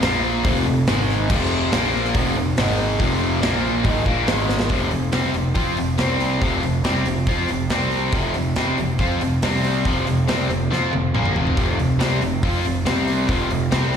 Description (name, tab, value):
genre	hard rock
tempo	140 BPM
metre	4/4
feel	straight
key	unclear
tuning	A4 = 439 Hz
part	cranked stack guitar	riff	0.0-14.0 s	F2 to F4	-20 LUFS	equal	overdrive, slapback echo
part	fuzz picked electric bass	bass	0.0-14.0 s	F1 to F2	-24 LUFS	equal	overdrive
part	big rock drum kit	drums	0.0-14.0 s	crash cymbal, hi-hat, kick drum, snare drum, toms	-24 LUFS	equal	none
room	small room ambience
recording	live gig heard through the venue's PA, recital hall reverb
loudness	-18 LUFS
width	side -8 dB against mid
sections	0.0-4.7 A section; 4.7-14.0 B section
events	drum fill 4.5, 10.7-11.6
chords	0.0 Bb5; 0.4 F5; 0.9 Ab5; 1.3 F5; 1.7 Bb5; 2.1 F5; 2.6 Ab5; 3.0 F5; 3.4 Bb5; 3.9 Absus2; 4.3 Ab5; 4.7 F5; 6.0 C5; 6.4 F5; 7.7 C5; 8.1 F5; 9.4 C5; 9.9 F5; 12.9 C5; 13.3 F5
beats	0.02 0.44 0.87 | 1.30 1.72 2.15 2.57 | 3.00 3.42 3.85 4.28 | 4.70 5.13 5.56 5.99 | 6.42 6.84 7.27 7.70 | 8.13 8.56 8.99 9.42 | 9.85 10.28 10.71 11.14 | 11.57 12.00 12.43 12.86 | 13.29 13.72